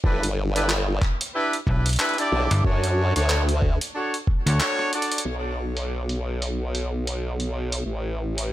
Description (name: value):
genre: glitch hop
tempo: 92 BPM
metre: 4/4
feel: swing 58% on 16ths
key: unclear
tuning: A4 = 440 Hz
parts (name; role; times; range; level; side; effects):
- clear horn section; stabs; 0.0-5.2 s; D4 to D5; -26 LUFS; equal; sidechain pumping, digital delay
- formant-sweep wobble bass; bass; 0.0-8.5 s; G1 to F#2; -24 LUFS; equal; chorus, tube saturation
- electronic kick drum; drums; 0.0-4.4 s; none; -22 LUFS; equal; none
- boom bap sampler-style drum kit; drums; 0.2-8.5 s; handclaps, hi-hat, rim click; -28 LUFS; right 1 dB; low-pass filter on hats, low-pass filter on snare, low-pass filter on room
- slap-like FM bass; bass; 1.7-4.6 s; G1 to D2; -20 LUFS; equal; none
room: little or no reverb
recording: none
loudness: -21 LUFS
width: side -14 dB against mid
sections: 0.0-5.3 A section; 5.3-8.5 B section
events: band accent 4.6-4.9; drum fill 4.9-5.3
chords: 0.0 G6; 2.6 Dmaj7; 5.3 N.C.